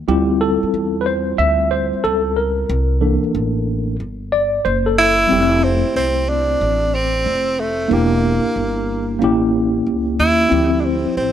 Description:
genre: hip hop, jazz-hop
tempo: 92 BPM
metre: 4/4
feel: swing 66% on 16ths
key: F major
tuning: A4 = 441 Hz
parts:
  - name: upright bass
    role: bass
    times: 0.0-11.3 s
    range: E1 to E2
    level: -22 LUFS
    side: equal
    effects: none
  - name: tine electric piano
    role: accompaniment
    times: 0.1-11.3 s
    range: E3 to E5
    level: -18 LUFS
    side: left 1 dB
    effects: overdrive, fast stereo tremolo
  - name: clear tenor saxophone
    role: melody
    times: 5.0-11.3 s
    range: A3 to E4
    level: -17 LUFS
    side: right 2 dB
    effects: analog delay
room: light reverb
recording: none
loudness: -15 LUFS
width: side -10 dB against mid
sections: 0.0-5.3 A section; 5.3-11.3 B section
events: tine electric piano solo 0.0-5.3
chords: 0.1 Dm11; 2.7 C13; 5.3 Fmaj9; 7.9 Em7b5; 9.2 A7b9; 10.5 Dm11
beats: | 0.08 0.73 1.39 2.04 | 2.69 3.34 4.00 4.65 | 5.30 5.95 6.61 7.26 | 7.91 8.56 9.21 9.87 | 10.52 11.17

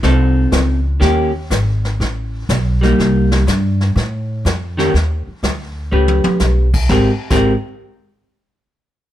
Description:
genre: jazz, small-group swing and bop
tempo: 122 BPM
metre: 4/4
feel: swing 68% on 8ths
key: unclear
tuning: A4 = 437 Hz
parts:
  - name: vintage hollow-body jazz guitar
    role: accompaniment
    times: 0.0-7.5 s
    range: Eb3 to B4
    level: -16 LUFS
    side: equal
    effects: none
  - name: upright bass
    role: bass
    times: 0.0-7.5 s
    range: Ab1 to A2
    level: -16 LUFS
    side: equal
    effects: none
  - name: jazz brush drum kit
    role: drums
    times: 0.0-7.4 s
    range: brushed snare drum, crash cymbal, hi-hat, kick drum, snare drum, toms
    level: -20 LUFS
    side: equal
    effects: none
room: little or no reverb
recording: none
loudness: -13 LUFS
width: side -12 dB against mid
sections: 0.0-6.9 A section; 6.9-8.8 B section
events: drum fill 5.9-6.4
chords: 0.0 F7; 1.0 Eb7; 2.0 Asus2; 3.0 Cm7; 4.0 F7; 4.9 N.C.; 5.9 A9; 6.9 Abmaj9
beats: 0.02 0.51 | 1.00 1.49 1.98 2.48 | 2.97 3.46 3.95 4.44 | 4.93 5.42 5.91 6.40 | 6.89 7.38

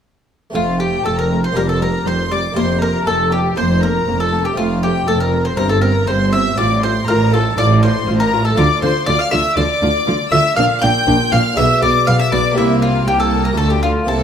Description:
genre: classical, baroque-style concerto movement with solo episodes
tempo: 120 BPM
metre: 4/4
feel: straight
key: F major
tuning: A4 = 440 Hz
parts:
  - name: warm chamber violin section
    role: melody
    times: 0.5-14.2 s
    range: E5 to G6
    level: -24 LUFS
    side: left 2 dB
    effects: none
  - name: harpsichord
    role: accompaniment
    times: 0.5-14.2 s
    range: C2 to G#4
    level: -24 LUFS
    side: equal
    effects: none
  - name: warm chamber viola section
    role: accompaniment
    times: 0.5-14.2 s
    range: G3 to F4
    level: -23 LUFS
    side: equal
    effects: none
  - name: rich chamber double bass section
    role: bass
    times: 0.5-14.2 s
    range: F1 to D2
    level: -20 LUFS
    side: right 2 dB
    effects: none
  - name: warm chamber cello section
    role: bass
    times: 0.5-14.2 s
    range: C2 to D3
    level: -20 LUFS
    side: right 1 dB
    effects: none
  - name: mandolin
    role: melody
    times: 0.6-14.2 s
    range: E4 to G5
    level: -19 LUFS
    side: left 2 dB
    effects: none
  - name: rich studio violin section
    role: second line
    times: 0.6-14.2 s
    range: E4 to G5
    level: -23 LUFS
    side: left 1 dB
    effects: none
room: moderate recital hall reverb, RT60 1.6 s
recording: none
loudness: -13 LUFS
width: side -8 dB against mid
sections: 0.6-14.2 A section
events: none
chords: 0.6 F; 1.6 Gm7/F; 2.6 Gm13/F; 4.6 F; 5.6 C/G; 6.6 F/A; 8.6 Dm; 10.6 Bb; 11.6 E7b9/B; 12.6 C5; 13.6 Dm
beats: | 0.55 1.06 1.56 2.07 | 2.57 3.07 3.58 4.08 | 4.58 5.08 5.58 6.08 | 6.58 7.08 7.58 8.08 | 8.58 9.07 9.57 10.07 | 10.57 11.07 11.57 12.07 | 12.57 13.07 13.57 14.08

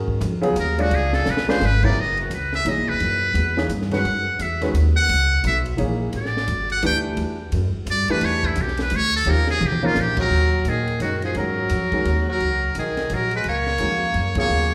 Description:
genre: modal jazz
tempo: 172 BPM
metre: 3/4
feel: swing 63% on 8ths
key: G# dorian from 10.3 s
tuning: A4 = 440 Hz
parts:
  - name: warm grand piano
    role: accompaniment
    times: 0.0-14.7 s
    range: A#2 to D5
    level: -28 LUFS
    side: equal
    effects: none
  - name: upright bass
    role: bass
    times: 0.0-14.7 s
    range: E1 to A#2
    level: -25 LUFS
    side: equal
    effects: none
  - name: compact cocktail drum kit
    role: drums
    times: 0.1-14.4 s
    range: crash cymbal, hi-hat, kick drum, ride cymbal, snare drum, toms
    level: -33 LUFS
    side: equal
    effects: none
  - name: trumpet with metal mute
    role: melody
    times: 0.6-14.7 s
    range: E4 to G5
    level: -25 LUFS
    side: equal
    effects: none
  - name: clear tenor saxophone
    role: second line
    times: 10.2-14.7 s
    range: D#3 to A#3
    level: -28 LUFS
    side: equal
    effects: none
room: wet recital hall reverb, RT60 1.6 s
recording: recorded in a church or concert hall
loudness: -21 LUFS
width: mono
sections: 0.0-2.0 A section; 2.0-10.3 A section; 10.3-14.7 B section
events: muted trumpet solo 0.0-10.3; drum fill 1.3-1.6, 9.6-10.0; band accent 14.3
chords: 0.0 G#9sus4; 0.9 C#7b9; 2.0 F#13sus4; 6.1 A9sus4; 9.3 D#7; 10.3 G#9sus4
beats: 0.21 0.56 | 0.91 1.26 1.61 | 1.96 2.31 2.66 | 3.00 3.35 3.70 | 4.05 4.40 4.75 | 5.09 5.44 5.79 | 6.14 6.48 6.83 | 7.18 7.53 7.87 | 8.22 8.57 8.92 | 9.26 9.61 9.96 | 10.31 10.66 11.01 | 11.35 11.70 12.05 | 12.40 12.75 13.10 | 13.45 13.80 14.15 | 14.50

